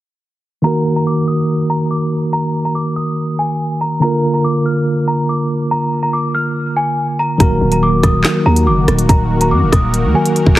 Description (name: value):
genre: hip hop, drill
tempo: 142 BPM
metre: 4/4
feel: half-time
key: Eb harmonic minor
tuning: A4 = 439 Hz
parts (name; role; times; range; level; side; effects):
- small celesta; melody; 0.6-10.6 s; Ab5 to F6; -20 LUFS; left 1 dB; low-pass filter
- tine electric piano; accompaniment; 0.6-10.6 s; D3 to Bb4; -16 LUFS; right 1 dB; fast stereo tremolo, low-pass filter
- sweeping resonant pad; sustained chords; 7.4-10.6 s; Eb3 to Bb4; -22 LUFS; left 1 dB; chorus
- growling 808-style bass; bass; 7.4-10.6 s; Eb1 to Gb2; -15 LUFS; equal; none
- drill drum kit; drums; 7.4-10.6 s; handclaps, hi-hat, kick drum, rim click, snare drum; -13 LUFS; equal; none
room: light reverb, digital ambience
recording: heavily compressed radio sound, low-pass filter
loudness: -13 LUFS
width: side -15 dB against mid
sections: 0.6-7.4 A section; 7.4-10.6 B section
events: filter sweep 0.6-7.4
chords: 0.6 Ebm; 4.0 Bb; 7.4 Ebm